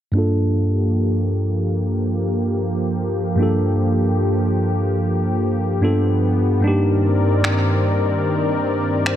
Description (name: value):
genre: contemporary R&B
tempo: 74 BPM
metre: 4/4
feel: swing 58% on 16ths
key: G minor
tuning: A4 = 439 Hz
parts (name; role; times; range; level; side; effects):
- bell-like tine electric piano; accompaniment; 0.1-9.2 s; G2 to C5; -18 LUFS; equal; low-pass filter
- warm analog pad; sustained chords; 0.1-9.2 s; G2 to D5; -22 LUFS; left 1 dB; chorus, low-pass filter
- electronic finger snaps; drums; 7.4-9.2 s; none; -25 LUFS; equal; none
room: light reverb, digital ambience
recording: dark, warm production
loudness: -17 LUFS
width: side -11 dB against mid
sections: 0.1-9.2 A section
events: filter sweep 0.1-9.2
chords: 0.1 Gm7; 5.8 G7; 6.6 Cm9/G